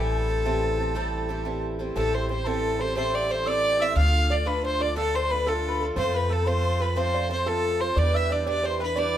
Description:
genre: celtic folk, Celtic slide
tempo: 120 BPM (dotted quarters)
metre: 12/8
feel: straight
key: A minor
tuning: A4 = 440 Hz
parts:
  - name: clear fiddle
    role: melody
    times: 0.0-9.2 s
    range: A4 to F5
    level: -26 LUFS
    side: left 1 dB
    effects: none
  - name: mellow hollow wooden whistle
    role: second line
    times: 0.0-9.2 s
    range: A5 to F6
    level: -33 LUFS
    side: right 1 dB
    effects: none
  - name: picked twelve-string acoustic guitar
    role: accompaniment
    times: 0.0-9.2 s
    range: A2 to B4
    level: -30 LUFS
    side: right 3 dB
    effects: none
  - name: upright bass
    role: bass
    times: 0.0-9.2 s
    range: A1 to F2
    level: -28 LUFS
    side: equal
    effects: none
  - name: open-back banjo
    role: second line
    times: 2.0-9.2 s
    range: A4 to F5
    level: -34 LUFS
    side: right 2 dB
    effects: none
room: moderate studio reverb, RT60 0.6 s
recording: none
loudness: -22 LUFS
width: side -11 dB against mid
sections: 0.0-2.0 A section; 2.0-9.2 A section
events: none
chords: 0.0 Am7; 4.0 Dm; 6.0 F; 8.0 Em7

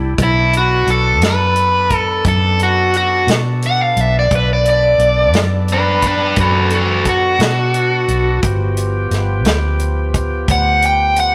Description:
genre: slow blues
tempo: 58 BPM (dotted quarters)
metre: 12/8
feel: straight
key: B minor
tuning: A4 = 440 Hz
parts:
  - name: overdriven tonewheel organ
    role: sustained chords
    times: 0.0-11.3 s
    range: F3 to A4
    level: -28 LUFS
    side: equal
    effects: slow rotary speaker
  - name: vintage muted fingered electric bass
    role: bass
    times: 0.0-11.3 s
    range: G1 to B2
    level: -20 LUFS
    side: equal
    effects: none
  - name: biting overdriven guitar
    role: melody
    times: 0.2-11.3 s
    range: D4 to G5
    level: -16 LUFS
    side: equal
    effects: spring reverb
  - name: warm soul drum kit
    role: drums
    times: 0.2-11.3 s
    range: hi-hat, kick drum, snare drum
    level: -21 LUFS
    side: equal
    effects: none
room: moderate stone room reverb, RT60 1.0 s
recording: rough rehearsal-room recording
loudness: -15 LUFS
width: mono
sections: 0.0-11.3 A section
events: none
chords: 0.2 Bm7; 8.4 G7

